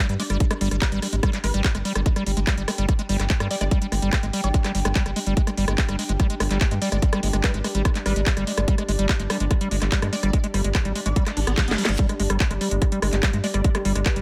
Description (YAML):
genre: psychedelic trance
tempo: 145 BPM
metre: 4/4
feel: straight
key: G major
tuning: A4 = 440 Hz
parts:
  - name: liquid acid bass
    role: riff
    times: 0.0-14.2 s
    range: F3 to D4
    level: -30 LUFS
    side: equal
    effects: chorus, sidechain pumping, tape echo
  - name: warbly tape-like pad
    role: texture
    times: 0.0-14.2 s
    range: D4 to G5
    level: -36 LUFS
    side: equal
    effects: chorus, built-in reverb, phaser, sidechain pumping
  - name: round analog bass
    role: bass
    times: 0.1-14.2 s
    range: G1 to G2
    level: -27 LUFS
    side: equal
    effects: none
  - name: garage drum kit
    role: drums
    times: 0.1-14.2 s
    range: handclaps, hi-hat, rim click, snare drum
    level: -30 LUFS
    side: equal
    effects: none
  - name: resonant blip pluck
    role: second line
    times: 0.2-14.2 s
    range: B4 to D5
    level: -38 LUFS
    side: equal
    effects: phaser, cassette tape, sidechain pumping, high-pass filter, tape echo
  - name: electronic kick drum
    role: drums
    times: 0.4-14.1 s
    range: none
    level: -24 LUFS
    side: equal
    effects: none
  - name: reverse cymbal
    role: sound effects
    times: 11.3-12.0 s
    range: none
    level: -38 LUFS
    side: equal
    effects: none
  - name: pulsing gated texture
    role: sustained chords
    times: 12.6-14.2 s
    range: G3 to G4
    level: -36 LUFS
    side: equal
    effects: chorus, built-in reverb, sidechain pumping
room: digital ambience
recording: none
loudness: -23 LUFS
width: mono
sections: 0.0-14.2 A section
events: reverse cymbal 11.3-12.0; drum fill 11.6-12.0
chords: 0.0 G5